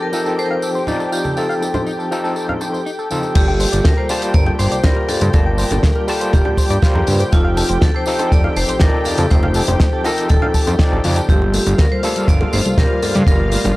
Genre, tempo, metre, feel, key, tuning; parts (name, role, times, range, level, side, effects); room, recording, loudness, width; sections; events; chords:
nu-disco, nu disco; 121 BPM; 4/4; straight; G minor; A4 = 438 Hz
vibraphone with hard mallets; melody; 0.0-13.8 s; F4 to D5; -23 LUFS; left 1 dB; vintage 12-bit sampler grit
overdriven tine electric piano; accompaniment; 0.0-13.8 s; F3 to A5; -22 LUFS; equal; medium tremolo
lush unison pad; sustained chords; 0.0-13.8 s; F4 to G5; -27 LUFS; equal; chorus, sidechain pumping
direct-recorded clean electric guitar; riff; 0.0-11.3 s; Eb4 to G5; -27 LUFS; left 2 dB; analog chorus
tambourine, bongos and congas; percussion; 0.1-13.7 s; -27 LUFS; right 1 dB
fat analog bass; bass; 3.4-13.7 s; Eb1 to G2; -18 LUFS; equal
damped 70s drum kit; drums; 3.4-13.7 s; crash cymbal, hi-hat, snare drum; -24 LUFS; left 1 dB; studio reverb
kick drum; drums; 3.4-13.4 s; -15 LUFS; equal; studio reverb
soft round pluck; arpeggios; 11.3-13.8 s; F3 to A3; -24 LUFS; equal; chorus, sidechain pumping
small room ambience; dry, gritty hardware recording, cassette tape; -14 LUFS; side -19 dB against mid
0.0-3.4 A section; 3.4-13.8 B section
drop 3.4-13.8
0.0 F7; 3.4 Gm9; 7.3 F7; 11.3 Gm9